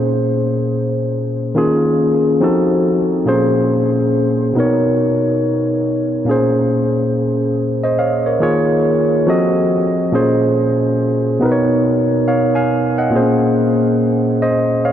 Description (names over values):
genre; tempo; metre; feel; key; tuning
R&B; 70 BPM; 4/4; swing 64% on 16ths; unclear; A4 = 445 Hz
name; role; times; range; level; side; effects
barky tine electric piano; solo; 0.0-14.9 s; Bb2 to Ab5; -13 LUFS; equal; analog delay
room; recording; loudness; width
wet huge ambient reverb, RT60 4.5 s; dreamy mix soaked in reverb; -13 LUFS; side -10 dB against mid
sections
0.0-10.1 A section; 10.1-14.9 B section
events
none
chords
0.0 Bbm9; 1.6 Eb9sus4; 2.4 F7b9; 3.3 Bbm9; 4.6 Bmaj9; 6.3 Bbm9; 8.4 Eb9sus4; 9.3 F7b9; 10.1 Bbm9; 11.4 Bmaj9; 13.1 Bbm9